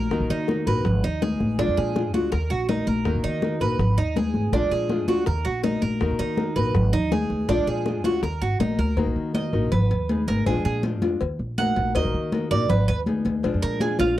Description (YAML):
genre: latin, Cuban son and guajira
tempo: 162 BPM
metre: 4/4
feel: straight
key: Eb harmonic minor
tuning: A4 = 440 Hz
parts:
  - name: nylon-string guitar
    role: accompaniment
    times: 0.0-14.2 s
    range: Eb3 to Bb4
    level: -27 LUFS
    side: left 4 dB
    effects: none
  - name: Cuban tres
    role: arpeggios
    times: 0.0-14.2 s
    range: D4 to Gb5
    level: -27 LUFS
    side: right 6 dB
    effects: none
  - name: upright bass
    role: bass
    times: 0.0-14.2 s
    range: Ab1 to Eb3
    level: -25 LUFS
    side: equal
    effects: none
  - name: bongos and cowbell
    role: percussion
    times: 0.1-14.2 s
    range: none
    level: -32 LUFS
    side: left 8 dB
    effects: none
  - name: congas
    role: percussion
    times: 0.1-14.2 s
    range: none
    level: -27 LUFS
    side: left 1 dB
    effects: none
room: light reverb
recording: dry, close 1970s-style studio recording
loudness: -21 LUFS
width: side -14 dB against mid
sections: 0.0-9.0 A section; 9.0-14.2 B section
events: Cuban tres solo 9.0-14.2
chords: 0.0 Ebm; 0.9 Abm; 1.6 Bb7; 2.3 Ebm; 3.8 Abm; 4.5 Bb7; 5.3 Ebm; 6.7 Abm; 7.5 Bb7; 8.2 Ebm; 9.7 Abm; 10.5 Bb7; 11.2 Ebm; 12.7 Abm; 13.4 Bb7